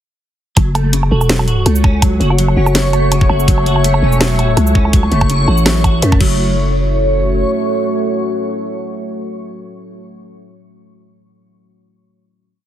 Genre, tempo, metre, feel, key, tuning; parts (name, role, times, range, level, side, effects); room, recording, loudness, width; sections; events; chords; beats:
half-time drum and bass; 165 BPM; 4/4; swing 54% on 16ths, half-time; F# minor; A4 = 440 Hz
deep dark ambient pad; sustained chords; 1.6-9.6 s; A3 to C#5; -20 LUFS; equal; chorus, built-in reverb, sidechain pumping
clean electric guitar; arpeggios; 0.6-6.5 s; C#3 to F#4; -22 LUFS; right 2 dB; ensemble chorus, dub echo
growling 808-style bass; bass; 0.6-7.4 s; E1 to F#2; -14 LUFS; equal
drum and bass drum kit; drums; 0.6-6.3 s; crash cymbal, hi-hat, shaker, snare drum, woodblock; -18 LUFS; right 1 dB; small room ambience
electronic kick drum; drums; 0.6-6.3 s; -12 LUFS; equal; small room ambience
backwards swelling texture; texture; 1.7-6.4 s; C#5; -23 LUFS; equal; built-in reverb
thumb-piano-like synth pluck; melody; 1.1-2.7 s; F#4 to A4; -25 LUFS; equal; chorus, dub echo
light reverb, digital ambience; heavily compressed radio sound, multiband compression; -11 LUFS; side -11 dB against mid
0.6-6.4 drop; 6.4-9.3 final hit
drop 0.6-6.4
0.6 F#m
| 0.57 0.93 1.30 1.66 | 2.02 2.39 2.75 3.11 | 3.48 3.84 4.21 4.57 | 4.93 5.30 5.66 6.02 | 6.39 6.75 7.11 7.48 | 7.84 8.21 8.57 8.93